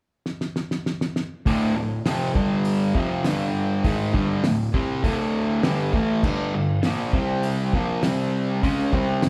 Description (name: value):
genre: garage rock duo or trio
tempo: 100 BPM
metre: 4/4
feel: straight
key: unclear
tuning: A4 = 443 Hz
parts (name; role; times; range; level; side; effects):
- cloth-damped thuddy drum kit; drums; 0.3-9.3 s; crash cymbal, hi-hat, kick drum, snare drum; -28 LUFS; equal; none
- fuzz guitar; riff; 1.5-9.3 s; D2 to C#4; -24 LUFS; equal; distortion
room: moderate large studio reverb, RT60 1.2 s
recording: band playing live in one room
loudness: -23 LUFS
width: mono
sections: 0.0-1.5 A section; 1.5-9.3 B section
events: drum fill 0.3-1.5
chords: 0.0 N.C.; 1.5 D5; 2.4 G5; 3.0 F5; 3.2 G5; 3.8 D5; 6.2 G5; 7.1 C5; 7.7 Bb5; 8.0 C5; 8.6 G5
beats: 0.26 0.86 | 1.46 2.06 2.65 3.25 | 3.85 4.45 5.04 5.64 | 6.24 6.84 7.43 8.03 | 8.63 9.23